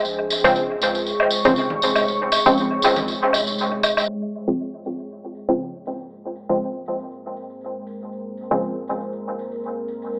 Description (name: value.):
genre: dub techno.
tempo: 119 BPM.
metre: 4/4.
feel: swing 55% on 16ths.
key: Bb minor.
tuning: A4 = 440 Hz.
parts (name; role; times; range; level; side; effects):
deep dark ambient pad; sustained chords; 0.0-10.2 s; Ab3 to Db6; -30 LUFS; equal; chorus, built-in reverb.
filtered dub chord stab; stabs; 0.0-8.8 s; Db3 to C4; -24 LUFS; equal; chorus, phaser, dub echo.
tambourine; percussion; 0.0-10.2 s; none; -27 LUFS; equal; none.
round analog bass; bass; 0.1-4.0 s; F1 to Db2; -38 LUFS; equal; none.
woodblock and congas; percussion; 1.2-4.1 s; none; -26 LUFS; equal; dub echo.
room: moderate echo chamber reverb, RT60 1.3 s.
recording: dry, gritty hardware recording, low-pass filter, AM radio sound.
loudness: -22 LUFS.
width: mono.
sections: 0.0-4.1 A section; 4.1-10.2 B section.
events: filter sweep on synth stab 0.0-4.1; filter sweep 4.1-10.2.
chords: 0.0 Bbm9.